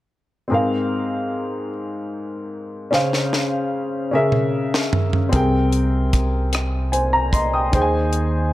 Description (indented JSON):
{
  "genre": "slow gospel",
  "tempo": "50 BPM (dotted quarters)",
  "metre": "6/8",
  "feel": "straight",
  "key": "Ab major",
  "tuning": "A4 = 439 Hz",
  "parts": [
    { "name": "warm upright piano", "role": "accompaniment", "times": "0.5-8.5 s", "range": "Ab2 to Eb6", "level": "-20 LUFS", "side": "left 1 dB", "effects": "none" },
    { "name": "tight funk drum kit", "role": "drums", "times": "2.9-8.3 s", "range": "hi-hat, kick drum, rim click, snare drum, toms", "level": "-22 LUFS", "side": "right 1 dB", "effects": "none" },
    { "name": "fingered electric bass", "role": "bass", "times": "5.3-8.5 s", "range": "C2 to Eb2", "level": "-21 LUFS", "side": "equal", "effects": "none" }
  ],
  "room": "moderate plate reverb, RT60 1.7 s, studio reverb",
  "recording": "dark, warm production",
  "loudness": "-18 LUFS",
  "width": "side -15 dB against mid",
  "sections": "0.5-8.5 A section",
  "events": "drum fill 2.9-5.3",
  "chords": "0.5 Ab69; 2.9 Dbmaj7; 4.1 Dbm6; 5.3 Abmaj9/C; 7.7 Ab/Eb",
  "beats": "| 0.51 1.72 | 2.92 4.12 | 5.33 6.53 | 7.73"
}